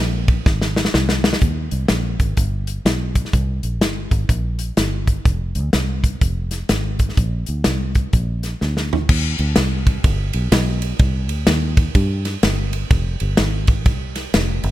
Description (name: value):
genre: uptempo gospel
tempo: 125 BPM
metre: 4/4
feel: swing 63% on 8ths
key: unclear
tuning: A4 = 440 Hz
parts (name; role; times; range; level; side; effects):
- fingered electric bass; bass; 0.0-14.7 s; F1 to G2; -21 LUFS; equal; none
- natural country drum kit; drums; 0.3-14.7 s; crash cymbal, hi-hat, kick drum, ride cymbal, snare drum, toms; -18 LUFS; equal; none
room: little or no reverb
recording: none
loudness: -17 LUFS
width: side -15 dB against mid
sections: 0.0-1.4 A section; 1.4-9.1 B section; 9.1-14.7 A section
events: drum fill 0.5-1.4, 8.6-9.1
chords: none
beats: 0.46 0.94 | 1.42 1.90 2.38 2.85 | 3.33 3.81 4.29 4.77 | 5.25 5.73 6.21 6.69 | 7.17 7.65 8.13 8.61 | 9.09 9.57 10.04 10.52 | 11.00 11.47 11.95 12.43 | 12.90 13.38 13.86 14.33